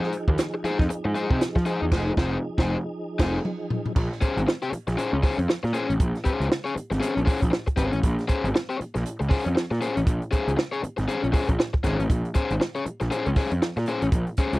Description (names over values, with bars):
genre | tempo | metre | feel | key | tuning
funk | 118 BPM | 4/4 | swing 60% on 16ths | Bb minor | A4 = 438 Hz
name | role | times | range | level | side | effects
overdriven electric guitar | accompaniment | 0.0-14.6 s | Db4 to Db5 | -26 LUFS | left 3 dB | none
mellow tonewheel organ | sustained chords | 0.0-3.9 s | F3 to Ab4 | -33 LUFS | right 2 dB | chorus vibrato, fast rotary speaker
compact cocktail drum kit | drums | 0.0-14.6 s | crash cymbal, hi-hat, kick drum, snare drum, toms | -24 LUFS | equal | none
fuzz picked electric bass | bass | 0.3-14.6 s | F1 to F3 | -27 LUFS | equal | overdrive
room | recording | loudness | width
little or no reverb | dry, close 1970s-style studio recording | -22 LUFS | side -19 dB against mid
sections
0.0-4.0 A section; 4.0-14.6 B section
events
band accent 1.9-4.0; drum fill 2.9-4.0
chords
0.0 Fm7; 4.0 Bbm9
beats
0.39 0.90 1.41 | 1.92 2.43 2.94 3.45 | 3.96 4.47 4.98 5.49 | 6.00 6.51 7.02 7.53 | 8.04 8.54 9.05 9.56 | 10.07 10.57 11.08 11.59 | 12.10 12.60 13.11 13.62 | 14.12